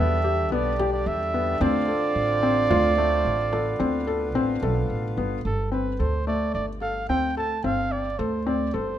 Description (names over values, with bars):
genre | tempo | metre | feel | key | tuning
contemporary instrumental, chamber music in an uneven meter | 110 BPM | 7/4 | straight | unclear | A4 = 440 Hz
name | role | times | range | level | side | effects
warm flugelhorn | melody | 0.0-9.0 s | A4 to A5 | -26 LUFS | right 4 dB | none
pedal harmonium | sustained chords | 0.0-5.4 s | D3 to F4 | -30 LUFS | left 1 dB | none
felt-muted upright piano | arpeggios | 0.0-8.9 s | A3 to A4 | -27 LUFS | left 5 dB | none
upright bass | bass | 0.0-9.0 s | G1 to E2 | -28 LUFS | right 2 dB | none
frame drum | percussion | 0.8-5.3 s | none | -31 LUFS | right 2 dB | none
room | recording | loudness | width
moderate recital hall reverb, RT60 1.7 s | close, detailed microphones | -22 LUFS | side -11 dB against mid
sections
0.0-5.4 A section; 5.4-9.0 B section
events
none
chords
0.0 Em7; 1.6 Dm7; 5.4 Gsus24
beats
0.52 1.07 | 1.61 2.16 2.71 3.25 3.80 4.35 4.90 | 5.45 5.99 6.54 7.09 7.64 8.19 8.74